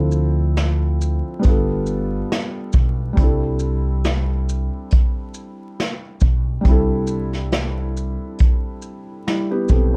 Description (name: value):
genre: lo-fi hip hop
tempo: 69 BPM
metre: 4/4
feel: swing 55% on 16ths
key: C major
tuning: A4 = 440 Hz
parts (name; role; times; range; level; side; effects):
- felt-muted upright piano; accompaniment; 0.0-10.0 s; F3 to C5; -27 LUFS; equal; none
- upright bass; bass; 0.0-10.0 s; G1 to D2; -23 LUFS; equal; none
- vintage brush drum kit; drums; 0.1-9.9 s; hi-hat, kick drum, shaker, snare drum; -20 LUFS; equal; vintage 12-bit sampler grit
room: light reverb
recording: vinyl crackle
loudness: -20 LUFS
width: mono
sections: 0.0-10.0 A section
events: none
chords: 0.0 Dm9; 1.4 G9; 3.2 C69